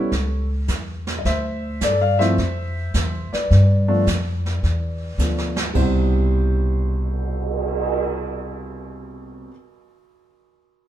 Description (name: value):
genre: jazz piano trio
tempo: 106 BPM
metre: 4/4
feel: swing 68% on 8ths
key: C major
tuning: A4 = 439 Hz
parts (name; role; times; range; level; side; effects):
- warm concert grand piano; melody; 0.0-9.5 s; B2 to F5; -24 LUFS; equal; none
- upright bass; bass; 0.1-9.5 s; C2 to G2; -20 LUFS; equal; none
- jazz brush drum kit; drums; 0.1-7.9 s; brushed snare drum, crash cymbal, cymbal swell, hi-hat, kick drum, snare drum; -27 LUFS; right 3 dB; none
room: light reverb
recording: band playing live in one room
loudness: -18 LUFS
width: side -12 dB against mid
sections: 0.0-5.8 A section; 5.8-8.0 B section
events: drum fill 5.2-5.8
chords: 0.0 A; 1.2 Dm9; 5.8 Cmaj7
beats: 0.12 0.68 | 1.25 1.81 2.37 2.94 | 3.50 4.06 4.63 5.19 | 5.75 6.32 6.88 7.44